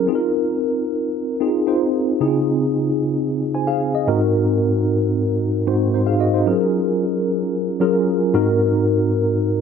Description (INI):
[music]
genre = pop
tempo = 112 BPM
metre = 4/4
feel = straight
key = unclear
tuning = A4 = 439 Hz
[part]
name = mellow tine electric piano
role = solo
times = 0.0-9.6 s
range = Ab2 to Ab5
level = -17 LUFS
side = equal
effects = medium stereo tremolo, analog chorus
[sound]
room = moderate plate reverb, RT60 3.5 s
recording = none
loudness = -17 LUFS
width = side -6 dB against mid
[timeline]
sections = 0.0-2.2 A section; 2.2-9.6 B section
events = none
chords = 0.1 F7sus4; 2.2 Dbmaj9; 4.1 Ab7; 6.5 Gbmaj9; 8.3 Ab7